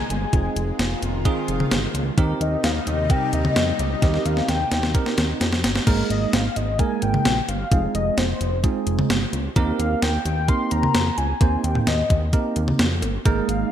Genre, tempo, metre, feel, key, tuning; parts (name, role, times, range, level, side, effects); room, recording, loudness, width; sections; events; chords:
synth-pop; 130 BPM; 4/4; straight; A4 = 440 Hz
warm velvety synth lead; melody; 0.0-13.7 s; C5 to C6; -27 LUFS; left 4 dB; chorus, ping-pong delay
lush unison pad; sustained chords; 0.0-5.8, 13.6-13.7 s; Bb2 to F4; -30 LUFS; equal; chorus, phaser
fat analog bass; bass; 0.0-13.6 s; F1 to F2; -24 LUFS; equal
clean 12-bit digital drum machine; drums; 0.1-13.6 s; cowbell, crash cymbal, hi-hat, kick drum, snare drum, toms; -22 LUFS; equal; overdrive, gated reverb
bell-like tine electric piano; accompaniment; 0.3-13.7 s; Ab3 to C5; -26 LUFS; right 5 dB; analog chorus
moderate lush hall reverb, RT60 2.2 s; bright 1980s-style digital production; -19 LUFS; side -10 dB against mid
0.0-5.9 A section; 5.9-13.7 A section
drum fill 4.0-5.9
0.3 Fm7; 2.2 Eb6; 5.9 Absus2; 7.7 Fm7; 9.6 Eb6